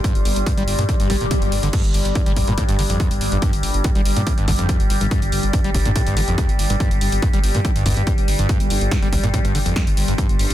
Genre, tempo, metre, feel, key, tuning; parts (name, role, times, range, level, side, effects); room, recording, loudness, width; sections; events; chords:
driving peak-time techno; 142 BPM; 4/4; straight; A4 = 440 Hz
overdriven acid bass; riff; 0.0-10.3 s; F2 to G3; -25 LUFS; equal; distortion, wide subtle chorus, sidechain pumping, tape echo
overtone-sweeping drone; drone; 0.0-10.5 s; G2 to G3; -27 LUFS; left 1 dB; chorus, built-in reverb, phaser, sidechain pumping
electronic kick drum; drums; 0.0-10.3 s; -20 LUFS; equal; overdrive
techno drum kit; drums; 0.0-10.5 s; crash cymbal, hi-hat, snare drum; -28 LUFS; left 1 dB; overdrive, sidechain pumping on hats, sidechain pumping on cymbals
warbly tape-like pad; texture; 0.0-10.5 s; G4 to C6; -29 LUFS; left 1 dB; chorus, built-in reverb, sidechain pumping
dark detuned saw bass; bass; 0.2-10.5 s; G1 to G2; -22 LUFS; equal; sidechain pumping
swell; sound effects; 1.1-1.7 s; -31 LUFS; right 1 dB
little or no reverb; dense, heavily limited modern master; -16 LUFS; side -13 dB against mid
0.0-10.5 A section
swell 1.1-1.7
0.0 G5